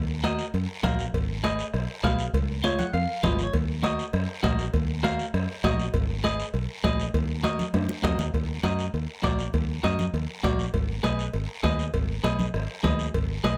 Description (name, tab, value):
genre	latin, cumbia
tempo	200 BPM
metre	4/4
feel	straight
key	Eb minor, Eb harmonic minor from 8.3 s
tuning	A4 = 440 Hz
part	fingered electric bass	bass	0.0-13.6 s	Ab1 to Gb2	-31 LUFS	equal	none
part	clean electric guitar	accompaniment	0.2-13.6 s	F4 to Gb5	-31 LUFS	equal	none
part	bombo	percussion	0.2-13.6 s	none	-33 LUFS	equal	none
part	congas	percussion	0.2-13.6 s	none	-33 LUFS	equal	none
part	cowbell and timbales	percussion	0.2-13.6 s	none	-39 LUFS	equal	none
part	guiro	percussion	0.2-13.6 s	none	-43 LUFS	equal	none
room	light reverb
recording	close, detailed microphones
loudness	-27 LUFS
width	mono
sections	0.0-8.3 A section; 8.3-13.6 B section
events	clean electric guitar fill 2.6-3.5; drum fill 7.7-8.3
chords	0.0 Ebm; 1.1 Abm; 2.3 Db; 3.5 Ebm; 5.9 Abm; 7.1 Ebm; 10.7 Abm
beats	0.24 0.54 0.84 | 1.14 1.44 1.74 2.04 | 2.34 2.64 2.94 3.24 | 3.54 3.84 4.14 4.44 | 4.74 5.04 5.34 5.64 | 5.94 6.24 6.54 6.84 | 7.14 7.44 7.74 8.04 | 8.34 8.64 8.94 9.24 | 9.54 9.84 10.14 10.44 | 10.74 11.04 11.34 11.64 | 11.94 12.24 12.54 12.84 | 13.14 13.44